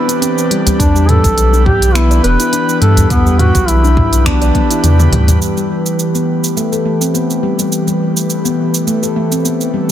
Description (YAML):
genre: organic downtempo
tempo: 104 BPM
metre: 4/4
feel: swing 54% on 16ths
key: unclear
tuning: A4 = 440 Hz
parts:
  - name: mellow duduk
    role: melody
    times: 0.0-5.1 s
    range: B3 to B4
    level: -17 LUFS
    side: equal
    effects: digital delay
  - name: airy breathy pad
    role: sustained chords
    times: 0.0-9.9 s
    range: E3 to B4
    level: -18 LUFS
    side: equal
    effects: chorus, sidechain pumping
  - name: handpan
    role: arpeggios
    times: 0.1-9.9 s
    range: G3 to D5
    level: -17 LUFS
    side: left 2 dB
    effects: low-pass filter, digital delay
  - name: deep house drum kit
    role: drums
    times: 0.1-9.7 s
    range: cabasa, finger snaps, hi-hat, toms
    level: -18 LUFS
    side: right 1 dB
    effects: soft clipping on snare
  - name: udu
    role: percussion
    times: 0.7-5.4 s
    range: none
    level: -18 LUFS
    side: equal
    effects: none
  - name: warm sub bass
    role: bass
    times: 0.8-5.4 s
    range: E1 to G2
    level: -11 LUFS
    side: equal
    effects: sidechain pumping
  - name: electronic kick drum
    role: drums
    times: 0.8-4.7 s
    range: none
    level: -16 LUFS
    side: equal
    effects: none
room: light reverb, digital ambience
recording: dense, heavily limited modern master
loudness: -10 LUFS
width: side -11 dB against mid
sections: 0.0-5.4 A section; 5.4-9.9 B section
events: drum fill 4.5-5.4; filter sweep on handpan 5.4-9.9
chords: 0.0 Cmaj9; 0.8 Em7; 5.4 A7sus2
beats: 0.22 | 0.80 1.37 1.95 2.53 | 3.10 3.68 4.26 4.84 | 5.41 5.99 6.57 7.14 | 7.72 8.30 8.87 9.45